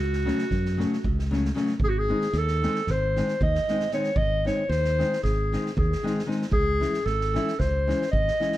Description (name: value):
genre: balkan folk, Balkan wedding band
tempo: 229 BPM (eighths)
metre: 9/8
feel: straight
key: unclear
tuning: A4 = 440 Hz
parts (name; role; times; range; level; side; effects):
- warm clarinet; melody; 0.0-8.6 s; F#4 to D#5; -26 LUFS; equal; plate reverb
- modern bright fingered electric bass; bass; 0.0-8.3 s; G#1 to F#2; -26 LUFS; equal; none
- street-band drum kit; percussion; 0.1-8.6 s; kick drum, snare drum; -31 LUFS; right 1 dB; none
- nylon-string guitar; accompaniment; 0.2-8.6 s; C#3 to E4; -28 LUFS; left 2 dB; none
room: moderate studio reverb, RT60 0.6 s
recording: dark, warm production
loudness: -22 LUFS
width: side -14 dB against mid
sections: 0.0-1.8 A section; 1.8-8.6 B section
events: none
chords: 0.0 F#m; 1.8 G#; 6.5 C#m